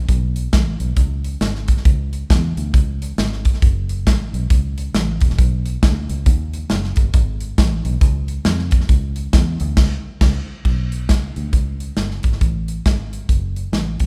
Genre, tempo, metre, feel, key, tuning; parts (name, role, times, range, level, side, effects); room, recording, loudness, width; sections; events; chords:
uptempo gospel; 136 BPM; 4/4; swing 61% on 8ths; F# minor; A4 = 439 Hz
fingered electric bass; bass; 0.0-14.1 s; E1 to E#2; -24 LUFS; equal
modern studio drum kit; drums; 0.1-14.1 s; crash cymbal, hi-hat, kick drum, snare drum; -19 LUFS; equal
light reverb; -19 LUFS; mono
0.0-10.7 A section; 10.7-14.1 B section
band accent 9.8-10.7